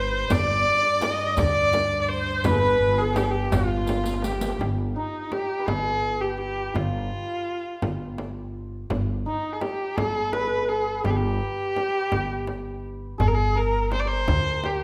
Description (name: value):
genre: Persian modal ensemble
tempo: 56 BPM (dotted quarters)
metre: 6/8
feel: straight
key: G dastgah homayun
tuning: A4 = 440 Hz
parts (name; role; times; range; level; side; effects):
- rich kamancheh; melody; 0.0-14.8 s; Eb4 to Eb5; -28 LUFS; equal; none
- santur; second line; 0.0-14.8 s; Eb4 to Eb5; -35 LUFS; equal; none
- warm chamber violin section; second line; 0.0-4.6 s; F4 to D5; -34 LUFS; equal; none
- upright bass; bass; 0.0-14.8 s; G1 to D2; -30 LUFS; equal; none
- dark cello; drone; 0.0-4.7 s; G2; -36 LUFS; equal; none
- frame drum; percussion; 0.3-14.8 s; none; -33 LUFS; equal; none
- riq; percussion; 0.3-4.6 s; none; -37 LUFS; equal; none
- tombak; percussion; 0.3-4.6, 13.2-14.8 s; none; -34 LUFS; equal; none
room: moderate scoring stage reverb, RT60 1.5 s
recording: none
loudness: -25 LUFS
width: mono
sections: 0.0-4.6 A section; 4.6-13.2 B section; 13.2-14.8 C section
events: drum fill 3.9-4.6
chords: none